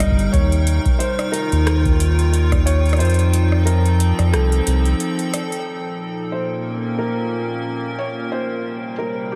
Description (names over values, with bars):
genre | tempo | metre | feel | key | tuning
IDM | 90 BPM | 4/4 | swing 56% on 16ths | Bb melodic minor | A4 = 439 Hz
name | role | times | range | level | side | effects
felt-muted upright piano | melody | 0.0-9.4 s | G4 to Eb5 | -29 LUFS | equal | vintage 12-bit sampler grit, delay
icy glass pad | sustained chords | 0.0-9.4 s | Bb2 to G5 | -25 LUFS | equal | chorus, built-in reverb
round analog bass | bass | 0.0-4.9 s | G1 to F2 | -18 LUFS | equal | none
booming analog drum machine | drums | 0.0-5.6 s | hi-hat, rim click | -32 LUFS | equal | low-pass filter on hats, low-pass filter on snare, low-pass filter on room
electronic kick drum | drums | 0.0-2.6 s | none | -21 LUFS | equal | none
room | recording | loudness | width
moderate cathedral reverb, RT60 6.5 s | dreamy mix soaked in reverb | -19 LUFS | mono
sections
0.0-5.7 A section; 5.7-9.4 B section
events
kick drops out 3.0-5.7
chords
0.3 Ebadd9; 3.0 F7; 5.7 Bbm6; 8.3 Cm7